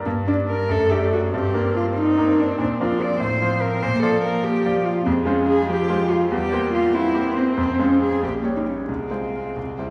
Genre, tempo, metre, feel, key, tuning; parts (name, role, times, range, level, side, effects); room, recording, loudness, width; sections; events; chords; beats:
quick classical-period movement for piano quartet; 95 BPM (dotted quarters); 6/8; rubato; G minor, F minor from 5.1 s; A4 = 441 Hz
bright grand piano; accompaniment; 0.0-9.9 s; Bb1 to D5; -26 LUFS; equal
warm cello; second line; 0.1-9.9 s; Bb3 to D5; -24 LUFS; equal
clear violin; melody; 0.5-9.5 s; barely audible
warm viola; accompaniment; 0.7-9.9 s; F3 to C4; -28 LUFS; equal
wet recital hall reverb, RT60 1.6 s; heard from further back in the room, vinyl crackle; -21 LUFS; mono
0.0-9.9 A section
0.0 G5; 0.7 D/F#; 1.3 Gm; 2.6 Bb; 3.2 F/A; 3.8 Bb; 5.1 Fm; 6.3 C7/E; 7.6 Fm; 8.2 Gdim/Bb; 8.9 Fm/C
| 0.05 0.69 | 1.32 1.96 | 2.59 3.21 | 3.83 4.45 | 5.06 5.69 | 6.32 6.94 | 7.58 8.22 | 8.88 9.56